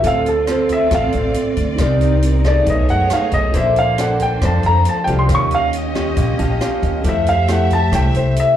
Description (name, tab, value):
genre	bossa nova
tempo	137 BPM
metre	4/4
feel	straight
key	unclear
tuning	A4 = 441 Hz
part	warm baby grand piano	melody	0.0-8.6 s	A4 to Db6	-17 LUFS	equal	plate reverb, slapback echo
part	mellow tine electric piano	accompaniment	0.0-8.6 s	Eb4 to E6	-27 LUFS	right 4 dB	auto-pan, plate reverb, slapback echo
part	nylon-string guitar	accompaniment	0.0-8.6 s	B2 to D5	-22 LUFS	left 1 dB	plate reverb, slapback echo
part	warm symphonic string section	sustained chords	0.0-8.6 s	A3 to E5	-26 LUFS	right 3 dB	plate reverb
part	upright bass	bass	0.0-8.3 s	A1 to F#2	-18 LUFS	equal	none
part	open jazz drum kit	drums	0.0-8.5 s	hi-hat, kick drum, rim click	-24 LUFS	equal	none
room	light reverb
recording	live gig heard through the venue's PA, club reverb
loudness	-14 LUFS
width	side -10 dB against mid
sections	0.0-8.6 A section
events	grand piano solo 0.0-8.6; tine electric piano fill 6.2-7.0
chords	0.0 Dm7; 1.8 Cm9; 2.7 B13; 3.5 Bbmaj9; 5.3 Eb9; 7.0 Fmaj9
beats	| 0.04 0.48 0.92 1.35 | 1.79 2.23 2.67 3.11 | 3.54 3.98 4.42 4.86 | 5.29 5.73 6.17 6.61 | 7.04 7.48 7.92 8.36